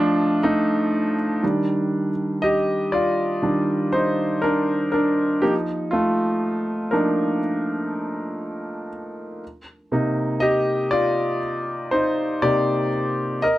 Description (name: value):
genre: pop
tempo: 60 BPM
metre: 4/4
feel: straight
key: unclear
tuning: A4 = 440 Hz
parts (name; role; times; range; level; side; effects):
- clear concert grand piano; solo; 0.0-13.6 s; C3 to Eb5; -20 LUFS; equal; none
room: light reverb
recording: dry, close 1970s-style studio recording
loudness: -20 LUFS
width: side -15 dB against mid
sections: 0.0-1.4 A section; 1.4-13.6 B section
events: grand piano solo 0.0-1.4, 1.4-13.6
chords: 0.0 F7; 1.4 Ebmaj7; 5.4 F7sus4; 9.4 Cm7